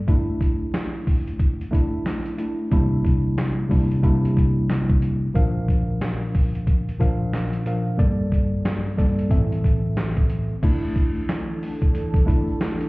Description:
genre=hip hop, boom-bap hip-hop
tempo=91 BPM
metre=4/4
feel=swing 60% on 16ths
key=D minor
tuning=A4 = 440 Hz
part: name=mellow tine electric piano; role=accompaniment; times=0.1-12.9 s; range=G2 to F5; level=-23 LUFS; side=equal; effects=medium stereo tremolo
part: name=trip hop sampler-style drum kit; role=drums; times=0.1-12.9 s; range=crash cymbal, handclaps, hi-hat, kick drum, snare drum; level=-22 LUFS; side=equal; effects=none
part: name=dark analog pad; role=sustained chords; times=10.9-12.9 s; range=E3 to A4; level=-30 LUFS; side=right 1 dB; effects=chorus
part: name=egg shaker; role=percussion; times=10.6-12.8 s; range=none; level=-66 LUFS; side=right 4 dB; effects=none
room=light reverb, digital ambience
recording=heard muffled through a wall, club reverb, vinyl crackle, EQ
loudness=-19 LUFS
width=side -23 dB against mid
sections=0.0-10.6 A section; 10.6-12.9 B section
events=none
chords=0.1 Dsus2; 2.7 C7; 5.4 Bb; 8.0 Gmadd9; 9.3 Am; 10.6 Dsus2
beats=| 0.08 0.74 1.40 2.06 | 2.72 3.38 4.04 4.70 | 5.35 6.01 6.67 7.33 | 7.99 8.65 9.31 9.97 | 10.63 11.29 11.95 12.61

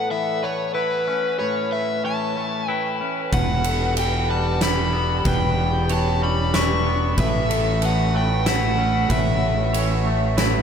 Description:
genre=post-rock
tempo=93 BPM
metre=3/4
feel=straight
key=unclear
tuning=A4 = 440 Hz
part: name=overdriven electric guitar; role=melody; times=0.0-10.4 s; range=B4 to C#6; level=-24 LUFS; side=left 2 dB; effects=tape echo
part: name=electric guitar through a small old amp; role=arpeggios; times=0.0-10.6 s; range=A4 to C#5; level=-30 LUFS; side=right 4 dB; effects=analog chorus, tape echo
part: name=twangy electric guitar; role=arpeggios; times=0.0-10.6 s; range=E2 to E4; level=-27 LUFS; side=left 3 dB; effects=spring reverb, tape echo
part: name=dark chamber string section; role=sustained chords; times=3.3-10.6 s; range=E3 to G4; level=-30 LUFS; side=right 2 dB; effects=stereo widening
part: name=growling fingered electric bass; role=bass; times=3.3-10.6 s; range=E1 to A1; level=-23 LUFS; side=equal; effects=overdrive
part: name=huge arena drum kit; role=drums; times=3.3-10.5 s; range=kick drum, ride cymbal, snare drum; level=-25 LUFS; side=right 1 dB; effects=none
room=wet huge ambient reverb, RT60 8.4 s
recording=dreamy mix soaked in reverb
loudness=-19 LUFS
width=side -7 dB against mid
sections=0.0-10.6 A section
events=none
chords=0.0 A; 3.3 Em; 7.2 A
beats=0.11 0.75 | 1.39 2.03 2.68 | 3.32 3.96 4.60 | 5.25 5.89 6.53 | 7.17 7.82 8.46 | 9.10 9.74 10.39

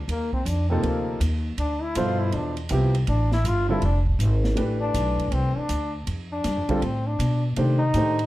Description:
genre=modal jazz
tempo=160 BPM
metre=4/4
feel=swing 66% on 8ths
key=unclear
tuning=A4 = 440 Hz
part: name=upright bass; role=bass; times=0.0-8.3 s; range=F1 to C3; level=-24 LUFS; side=equal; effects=none
part: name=bright trombone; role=second line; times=0.1-8.3 s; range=Bb3 to F4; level=-27 LUFS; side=left 1 dB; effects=none
part: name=open jazz drum kit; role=drums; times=0.1-8.2 s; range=hi-hat, kick drum, ride cymbal, snare drum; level=-35 LUFS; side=right 2 dB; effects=none
part: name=warm grand piano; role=accompaniment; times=0.7-8.2 s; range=B2 to C5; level=-26 LUFS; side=right 1 dB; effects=none
room=light reverb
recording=dark, warm production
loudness=-21 LUFS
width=side -16 dB against mid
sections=0.0-8.3 A section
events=trombone solo 0.0-8.3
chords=0.0 Cm11; 1.6 Dm11; 7.6 Cmadd9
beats=| 0.08 0.45 0.83 1.20 | 1.58 1.95 2.33 2.70 | 3.07 3.45 3.82 4.20 | 4.57 4.95 5.32 5.70 | 6.07 6.44 6.82 7.19 | 7.57 7.94

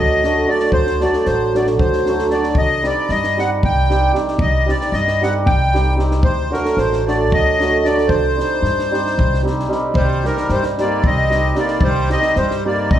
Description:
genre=balkan folk, Balkan wedding band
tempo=227 BPM (eighths)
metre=7/8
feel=straight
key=C dorian sharp4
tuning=A4 = 441 Hz
part: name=accordion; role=melody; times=0.0-13.0 s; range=Bb4 to G5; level=-19 LUFS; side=left 1 dB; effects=light tremolo tuning
part: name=hammered dulcimer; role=accompaniment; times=0.0-13.0 s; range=F#3 to G4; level=-19 LUFS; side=right 2 dB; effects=none
part: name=upright bass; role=bass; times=0.0-13.0 s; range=A1 to G2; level=-21 LUFS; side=equal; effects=none
part: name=compact cocktail drum kit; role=percussion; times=0.2-13.0 s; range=kick drum, snare drum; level=-22 LUFS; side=left 1 dB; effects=none
part: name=clear trumpet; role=second line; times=10.0-13.0 s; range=G3 to C4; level=-25 LUFS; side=right 1 dB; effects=none
room=moderate recital hall reverb, RT60 1.4 s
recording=heard from further back in the room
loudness=-14 LUFS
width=side -11 dB against mid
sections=0.0-10.0 A section; 10.0-13.0 A section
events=none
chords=0.0 D; 2.6 Cm; 6.2 D; 8.1 Cm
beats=0.20 0.46 | 0.72 0.98 1.24 1.50 1.77 2.03 2.29 | 2.55 2.81 3.08 3.34 3.60 3.86 4.12 | 4.39 4.65 4.91 5.18 5.44 5.71 5.97 | 6.23 6.50 6.76 7.03 7.29 7.56 7.82 | 8.09 8.36 8.62 8.89 9.15 9.42 9.69 | 9.95 10.22 10.48 10.75 11.02 11.28 11.55 | 11.81 12.08 12.34 12.61 12.88

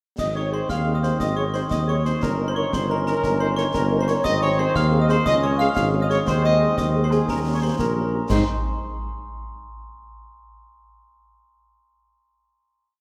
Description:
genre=military-style march for wind band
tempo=118 BPM (dotted quarters)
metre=6/8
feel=straight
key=Ab major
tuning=A4 = 440 Hz
part: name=mellow trumpet section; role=melody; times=0.2-8.4 s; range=Ab4 to F5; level=-29 LUFS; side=equal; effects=none
part: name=glockenspiel with brass mallets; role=second line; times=0.2-8.5 s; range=Ab5 to F6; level=-32 LUFS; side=equal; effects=none
part: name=mellow woodwind section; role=second line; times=0.2-8.4 s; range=Eb4 to F5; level=-31 LUFS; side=equal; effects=none
part: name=warm trombone section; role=sustained chords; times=0.2-8.4 s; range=Eb3 to Eb4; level=-32 LUFS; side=equal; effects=none
part: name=mellow tuba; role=bass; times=0.2-8.4 s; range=G1 to Ab2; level=-25 LUFS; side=equal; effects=none
part: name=concert snare drum, clash cymbals and concert bass drum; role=drums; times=0.2-8.5 s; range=none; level=-33 LUFS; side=equal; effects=none
part: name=warm French horn section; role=accompaniment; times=0.4-8.4 s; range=Ab3 to Bb4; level=-32 LUFS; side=equal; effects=none
room=wet scoring stage reverb, RT60 1.9 s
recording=none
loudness=-21 LUFS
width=mono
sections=0.2-8.3 A section; 8.3-9.3 final chord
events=none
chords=0.2 Ab; 2.2 Eb7/G; 4.2 Ab; 5.3 Db5; 6.3 Ab/Eb; 7.3 Eb7; 8.3 Ab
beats=| 0.19 0.70 | 1.21 1.71 | 2.22 2.73 | 3.23 3.74 | 4.25 4.75 | 5.26 5.77 | 6.27 6.78 | 7.29 7.79 | 8.30

